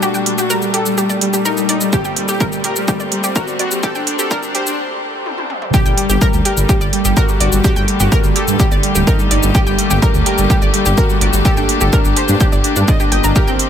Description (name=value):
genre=melodic techno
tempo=126 BPM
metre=4/4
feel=straight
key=G minor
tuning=A4 = 440 Hz
part: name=soft supersaw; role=melody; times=0.0-13.7 s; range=G3 to Eb5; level=-19 LUFS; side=left 1 dB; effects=vintage 12-bit sampler grit, sidechain pumping, tape echo
part: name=rich chamber string section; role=sustained chords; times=0.0-13.7 s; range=Bb2 to G4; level=-23 LUFS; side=left 2 dB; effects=sidechain pumping
part: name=analog pluck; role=arpeggios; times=0.0-13.5 s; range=D4 to G5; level=-21 LUFS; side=equal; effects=chorus, sidechain pumping, ping-pong delay
part: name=techno drum kit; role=drums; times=0.0-13.7 s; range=hi-hat, shaker, toms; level=-21 LUFS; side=right 1 dB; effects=none
part: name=electronic kick drum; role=drums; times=1.9-13.5 s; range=none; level=-15 LUFS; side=equal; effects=none
part: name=swelling detuned saw bass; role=bass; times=5.9-13.6 s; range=D1 to G2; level=-16 LUFS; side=equal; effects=tube saturation, sidechain pumping
room=little or no reverb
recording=high-pass filter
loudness=-12 LUFS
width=side -9 dB against mid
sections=0.0-5.7 A section; 5.7-13.7 B section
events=build-up 0.0-5.7; break 4.8-5.7; drum fill 5.3-5.7; drop 5.7-13.7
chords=0.0 Gmadd9